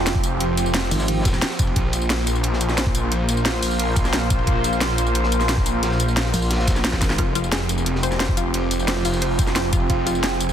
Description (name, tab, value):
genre	dark technical drum and bass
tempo	177 BPM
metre	4/4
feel	straight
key	unclear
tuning	A4 = 438 Hz
part	sweeping resonant pad	sustained chords	0.0-10.5 s	F3 to C5	-27 LUFS	right 1 dB	chorus, sidechain pumping
part	snarling distorted saw bass	bass	0.0-10.5 s	F1 to Bb1	-23 LUFS	equal	distortion, tube saturation, sidechain pumping
part	deep dark ambient pad	texture	0.0-10.5 s	F4 to C6	-28 LUFS	right 2 dB	chorus, built-in reverb, sidechain pumping
part	crunchy breakbeat drum kit	drums	0.1-10.5 s	hi-hat, ride cymbal, snare drum	-33 LUFS	equal	high-pass filter on cymbals, high-pass filter on hats, high-pass filter on snare, high-pass filter on room
part	drum and bass drum kit	drums	0.1-10.5 s	hi-hat, snare drum, tambourine	-24 LUFS	equal	overdrive
part	electronic kick drum	drums	0.2-10.0 s	none	-21 LUFS	equal	none
part	metallic wobble bass	bass	0.9-1.4, 6.3-7.2 s	Ab1 to Bb1	-22 LUFS	equal	distortion, chorus
part	analog pluck	arpeggios	7.2-10.3 s	F4 to C5	-28 LUFS	left 5 dB	chorus, sidechain pumping, ping-pong delay
room	light reverb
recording	dense, heavily limited modern master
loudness	-18 LUFS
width	side -9 dB against mid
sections	0.0-10.5 A section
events	drum fill 6.9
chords	0.0 Fm; 1.8 Bb5; 7.2 Fm